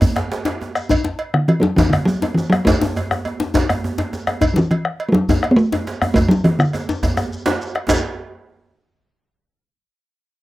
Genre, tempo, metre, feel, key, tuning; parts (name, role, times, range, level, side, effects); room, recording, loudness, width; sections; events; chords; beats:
west african traditional, West African drum ensemble; 138 BPM (dotted quarters); 12/8; straight; A4 = 440 Hz
bombo; percussion; 0.0-8.0 s; -22 LUFS; left 1 dB
cowbell; percussion; 0.0-8.0 s; -27 LUFS; right 3 dB
djembe; percussion; 0.0-8.0 s; -20 LUFS; left 3 dB
djembe; percussion; 0.0-8.0 s; -23 LUFS; right 2 dB
shekere; percussion; 0.0-8.0 s; -31 LUFS; equal
talking drum; melody; 1.3-6.9 s; D3 to B3; -16 LUFS; equal
light reverb; rough home demo mix; -16 LUFS; side -16 dB against mid
0.0-7.9 A section; 7.9-9.6 B section
drum fill 6.2-7.9
0.02 0.47 | 0.91 1.35 1.79 2.23 | 2.67 3.10 3.54 3.98 | 4.42 4.85 5.29 5.72 | 6.16 6.59 7.03 7.46 | 7.90